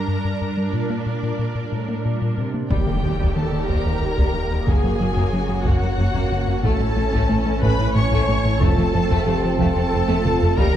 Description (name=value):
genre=cinematic, hybrid orchestral and electronic film score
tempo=61 BPM (dotted quarters)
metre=6/8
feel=straight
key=unclear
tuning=A4 = 440 Hz
part: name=warm symphonic violin section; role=melody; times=0.0-10.8 s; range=D5 to C#6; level=-30 LUFS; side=left 4 dB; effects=none
part: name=rich symphonic viola section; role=accompaniment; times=0.0-10.8 s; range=D4 to C#5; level=-28 LUFS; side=right 2 dB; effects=none
part: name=hollow soft pad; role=sustained chords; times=0.0-10.8 s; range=G3 to F5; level=-30 LUFS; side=right 2 dB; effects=ensemble chorus
part: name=rich symphonic cello section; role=bass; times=0.0-10.8 s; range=Eb2 to C3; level=-28 LUFS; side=right 2 dB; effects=none
part: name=rubbery square bass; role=riff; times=0.1-10.8 s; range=Eb2 to Bb3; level=-24 LUFS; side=left 2 dB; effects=none
part: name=warm symphonic violin section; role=second line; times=2.7-10.8 s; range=G3 to G4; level=-29 LUFS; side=left 2 dB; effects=none
part: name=warm trombone section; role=sustained chords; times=2.7-10.8 s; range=E3 to C#4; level=-30 LUFS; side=right 3 dB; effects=none
part: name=punchy sub bass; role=bass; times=2.7-10.8 s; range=Eb1 to A1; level=-28 LUFS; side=equal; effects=none
part: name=rich symphonic double bass section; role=bass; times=2.7-10.6 s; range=F1 to Eb2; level=-27 LUFS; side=right 3 dB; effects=none
part: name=taiko ensemble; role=drums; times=2.7-10.8 s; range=none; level=-25 LUFS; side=equal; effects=none
part: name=impact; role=sound effects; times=2.7-4.7 s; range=none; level=-30 LUFS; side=equal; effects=none
part: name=dark French horn section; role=sustained chords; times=3.7-10.8 s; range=C#4 to C5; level=-31 LUFS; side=left 3 dB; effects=none
room=moderate scoring stage reverb, RT60 1.5 s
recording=dark, warm production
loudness=-18 LUFS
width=side -10 dB against mid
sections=0.0-2.7 A section; 2.7-10.8 B section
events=impact 2.7-4.7; drum fill 10.1-10.6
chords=0.0 Gm; 0.7 Bb; 2.7 Eb; 4.7 F#; 6.6 A; 8.6 F